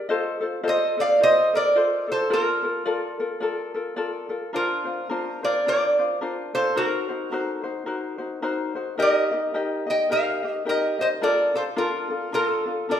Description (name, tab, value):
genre	Hawaiian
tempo	108 BPM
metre	4/4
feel	swing 59% on 8ths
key	Bb major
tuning	A4 = 440 Hz
part	ukulele	accompaniment	0.0-13.0 s	D4 to Eb5	-27 LUFS	left 3 dB	none
part	lap resonator guitar	melody	0.7-13.0 s	F4 to G5	-21 LUFS	right 1 dB	none
room	wet recital hall reverb, RT60 1.2 s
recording	minimal, uncompressed stereo recording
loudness	-21 LUFS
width	side -9 dB against mid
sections	0.0-4.5 A section; 4.5-13.0 B section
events	none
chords	0.1 F7; 2.3 Bbmaj7; 4.5 Bbadd9; 6.8 Ebm6; 9.0 Eb; 11.2 Bbmaj7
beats	| 0.09 0.64 1.20 1.75 | 2.31 2.86 3.42 3.98 | 4.53 5.09 5.64 6.20 | 6.75 7.31 7.87 8.42 | 8.98 9.54 10.09 10.65 | 11.20 11.76 12.32 12.87